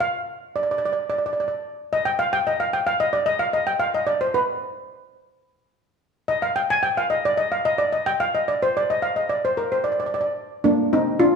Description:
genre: calypso.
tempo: 110 BPM.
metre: 4/4.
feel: straight.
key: unclear.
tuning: A4 = 441 Hz.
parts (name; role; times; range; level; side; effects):
steel pan; solo; 0.0-11.4 s; Bb3 to Ab5; -20 LUFS; equal; none.
room: wet large studio reverb, RT60 1.4 s.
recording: band playing live in one room.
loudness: -20 LUFS.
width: side -5 dB against mid.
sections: 0.0-10.7 A section.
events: none.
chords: 0.0 N.C.; 10.7 Bb.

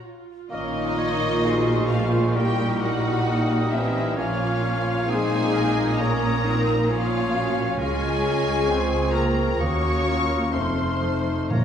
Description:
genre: classical, slow romantic movement for symphony orchestra.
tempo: 66 BPM.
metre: 4/4.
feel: rubato.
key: Bb minor.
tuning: A4 = 440 Hz.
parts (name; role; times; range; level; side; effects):
rich studio viola section; accompaniment; 0.0-11.6 s; A3 to Gb4; -28 LUFS; right 1 dB; none.
rich studio double bass section; bass; 0.0-11.6 s; F1 to Eb2; -28 LUFS; right 2 dB; none.
warm studio cello section; bass; 0.0-11.6 s; Db2 to Bb2; -29 LUFS; right 2 dB; none.
rich studio violin section; melody; 0.5-11.6 s; Eb5 to Db6; -30 LUFS; left 3 dB; none.
bright concert flute; second line; 0.5-11.6 s; Db6 to F6; -35 LUFS; equal; none.
clear oboe; second line; 0.5-11.6 s; Bb4 to Db5; -33 LUFS; right 1 dB; none.
mellow clarinet; second line; 0.5-11.6 s; Db4 to Ab4; -30 LUFS; left 2 dB; none.
rich studio violin section; second line; 0.5-11.6 s; Eb4 to Db5; -32 LUFS; left 2 dB; none.
clear bassoon; accompaniment; 0.5-11.6 s; G3 to Db4; -31 LUFS; right 2 dB; none.
dark French horn section; sustained chords; 0.5-11.6 s; Eb3 to Db4; -29 LUFS; left 2 dB; none.
timpani; percussion; 11.5-11.6 s; Bb2; -20 LUFS; equal; none.
room: wet recital hall reverb, RT60 1.5 s.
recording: heard from further back in the room.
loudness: -20 LUFS.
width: side -8 dB against mid.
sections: 0.5-11.6 A section.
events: none.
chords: 0.0 Bb5; 0.5 Bbm; 2.4 Bbdim7; 4.2 Bbm; 7.8 Bbm/Db; 9.6 Ebm; 10.5 F7.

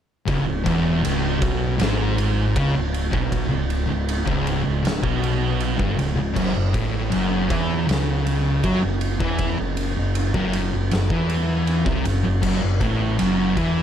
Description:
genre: stoner and doom metal.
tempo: 79 BPM.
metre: 4/4.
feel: straight.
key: C# minor.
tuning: A4 = 441 Hz.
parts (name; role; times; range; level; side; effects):
thick fuzz guitar; riff; 0.3-13.8 s; C#2 to F#3; -24 LUFS; left 6 dB; distortion.
thick fuzz guitar; riff; 0.3-13.8 s; C#2 to F#3; -24 LUFS; right 6 dB; distortion.
growling picked electric bass; bass; 0.3-13.8 s; C#1 to F#2; -26 LUFS; equal; overdrive.
oversized low-tuned drum kit; drums; 0.3-13.7 s; crash cymbal, kick drum, ride cymbal, snare drum; -26 LUFS; equal; none.
room: light reverb, studio ambience.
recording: none.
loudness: -19 LUFS.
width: side -9 dB against mid.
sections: 0.3-13.8 A section.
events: none.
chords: 0.3 C#m; 6.4 F#5.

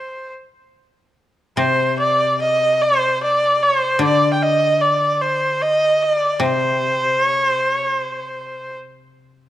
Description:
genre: japanese traditional, Japanese chamber music.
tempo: 47-51 BPM.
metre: 4/4.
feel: rubato.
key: C hirajoshi.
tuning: A4 = 440 Hz.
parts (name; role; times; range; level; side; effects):
clear erhu; melody; 0.0-8.8 s; C5 to G5; -16 LUFS; equal; none.
koto; accompaniment; 1.6-9.5 s; C3 to D3; -24 LUFS; left 2 dB; none.
room: moderate recital hall reverb, RT60 1.5 s.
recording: dark, warm production.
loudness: -15 LUFS.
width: side -13 dB against mid.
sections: 0.0-1.6 A section; 1.6-9.5 B section.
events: none.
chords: none.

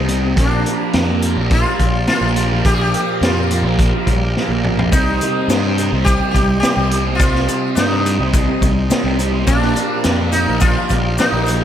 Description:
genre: psychedelic rock.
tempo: 105 BPM.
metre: 4/4.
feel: straight.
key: unclear.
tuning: A4 = 440 Hz.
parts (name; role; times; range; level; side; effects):
sitar; melody; 0.0-11.6 s; D4 to Ab4; -21 LUFS; left 1 dB; tape echo.
tonewheel organ; sustained chords; 0.0-11.6 s; G4 to Eb6; -27 LUFS; right 2 dB; slow rotary speaker, chorus vibrato.
thick fuzz guitar; riff; 0.0-11.6 s; Bb2 to C4; -20 LUFS; right 2 dB; distortion, phaser.
fuzz picked electric bass; bass; 0.0-11.6 s; Bb1 to G2; -19 LUFS; equal; overdrive.
vintage drum kit; drums; 0.1-11.6 s; hi-hat, kick drum, snare drum, toms; -19 LUFS; equal; none.
maracas; percussion; 4.9-11.6 s; none; -31 LUFS; left 11 dB; none.
room: moderate plate reverb, RT60 2.9 s.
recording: dreamy mix soaked in reverb.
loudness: -14 LUFS.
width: side -10 dB against mid.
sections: 0.0-11.6 A section.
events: drum fill 4.4-4.9.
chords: 0.4 Bb6; 4.9 Cm; 9.5 Bb6.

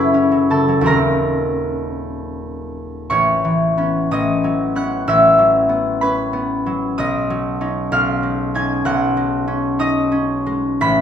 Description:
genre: classical, solo harp piece.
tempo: 52-65 BPM (dotted quarters).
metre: 6/8.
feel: rubato.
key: unclear.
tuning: A4 = 440 Hz.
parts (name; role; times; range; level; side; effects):
concert harp; solo; 0.0-11.0 s; D#1 to B6; -15 LUFS; equal; none.
room: wet recital hall reverb, RT60 1.4 s.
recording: recorded in a church or concert hall.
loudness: -15 LUFS.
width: side -8 dB against mid.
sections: 0.0-3.1 A section; 3.1-11.0 B section.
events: none.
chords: 0.0 F#m7; 0.9 D#m6; 3.1 Aadd9; 4.1 B9/A; 5.1 A69; 7.0 Badd9; 7.9 C#9/B; 8.8 B69.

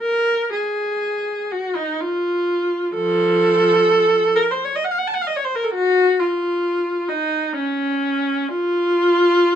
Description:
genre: classical, free, expressive piece for unaccompanied viola.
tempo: 39-45 BPM (dotted quarters).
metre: 6/8.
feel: rubato.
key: unclear.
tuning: A4 = 440 Hz.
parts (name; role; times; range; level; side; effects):
rich viola; solo; 0.0-9.6 s; F3 to A5; -17 LUFS; equal; none.
room: light reverb.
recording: dark, warm production.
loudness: -17 LUFS.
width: side -9 dB against mid.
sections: 0.0-9.6 A section.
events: none.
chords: none.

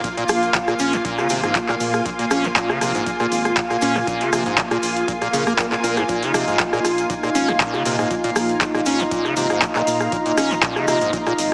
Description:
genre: acid house.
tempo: 119 BPM.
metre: 4/4.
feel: swing 53% on 16ths.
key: Bb minor.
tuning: A4 = 440 Hz.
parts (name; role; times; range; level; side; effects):
acid bass, square; riff; 0.0-11.3 s; Ab2 to Db4; -26 LUFS; equal; tube saturation, analog chorus, digital delay.
electro analog drum machine; drums; 0.0-11.5 s; handclaps, hi-hat, rim click; -25 LUFS; equal; none.
electronic kick drum; drums; 0.0-11.2 s; none; -35 LUFS; equal; none.
cabasa; percussion; 0.0-11.5 s; none; -36 LUFS; equal; none.
granular cloud pad; texture; 0.0-11.5 s; Bb3 to Bb5; -24 LUFS; equal; built-in reverb, sidechain pumping.
round analog bass; bass; 0.3-11.5 s; Ab1 to Bb2; -32 LUFS; equal; sidechain pumping.
swell; sound effects; 5.2-6.1 s; none; -30 LUFS; equal; none.
warm analog pad; sustained chords; 6.1-11.5 s; Eb4 to Eb5; -26 LUFS; equal; subtle chorus, sidechain pumping.
room: moderate lush hall reverb, RT60 1.6 s.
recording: heavily compressed radio sound, multiband compression, small speaker sound.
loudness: -20 LUFS.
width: mono.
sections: 0.0-11.5 A section.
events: swell 5.2-6.1.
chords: 0.0 Bb5.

